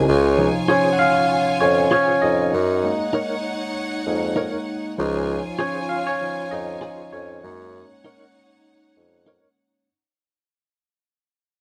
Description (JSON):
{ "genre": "soul", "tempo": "98 BPM", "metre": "4/4", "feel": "swing 58% on 16ths", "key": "Db major", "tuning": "A4 = 440 Hz", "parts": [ { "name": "warm studio string section", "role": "second line", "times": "0.0-9.8 s", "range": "Eb4 to Ab5", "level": "-30 LUFS", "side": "equal", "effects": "none" }, { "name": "barky tine electric piano", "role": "accompaniment", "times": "0.0-9.9 s", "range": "C3 to Gb5", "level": "-24 LUFS", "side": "equal", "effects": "overdrive" }, { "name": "warm bassoon", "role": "bass", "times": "0.0-9.4 s", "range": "Db2 to Gb2", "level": "-24 LUFS", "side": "equal", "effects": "none" }, { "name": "direct-recorded clean electric guitar", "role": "riff", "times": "0.7-9.5 s", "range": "Eb4 to Db5", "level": "-27 LUFS", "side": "equal", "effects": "tremolo" } ], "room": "light reverb", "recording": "band playing live in one room", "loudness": "-21 LUFS", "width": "mono", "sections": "0.1-9.9 A section", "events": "fade-out 0.1-9.9; tine electric piano solo 0.1-9.9", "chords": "0.1 Dbmaj7; 2.5 Gb6; 5.0 Dbmaj7; 7.4 Gb6" }